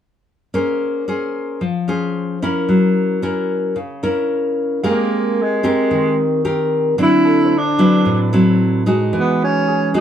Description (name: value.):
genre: bossa nova.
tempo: 112 BPM.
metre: 4/4.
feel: straight.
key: unclear.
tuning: A4 = 444 Hz.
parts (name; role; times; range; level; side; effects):
nylon-string guitar; accompaniment; 0.5-10.0 s; A2 to C5; -16 LUFS; left 1 dB; none.
clear grand piano; accompaniment; 4.8-10.0 s; G#4 to F5; -28 LUFS; right 6 dB; none.
breathy tenor saxophone; melody; 4.9-10.0 s; Ab3 to E4; -18 LUFS; right 3 dB; none.
room: moderate large studio reverb, RT60 0.8 s.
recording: band playing live in one room.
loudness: -15 LUFS.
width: side -9 dB against mid.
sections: 0.5-4.8 A section; 4.8-10.0 B section.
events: tenor saxophone solo 4.8-10.0.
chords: 0.5 Bbm9; 2.7 Gb7; 4.8 Abmaj9; 7.0 D9; 9.1 Emaj9.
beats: | 0.54 1.07 1.61 2.15 | 2.69 3.22 3.76 4.30 | 4.84 5.37 5.91 6.45 | 6.98 7.52 8.06 8.59 | 9.13 9.67.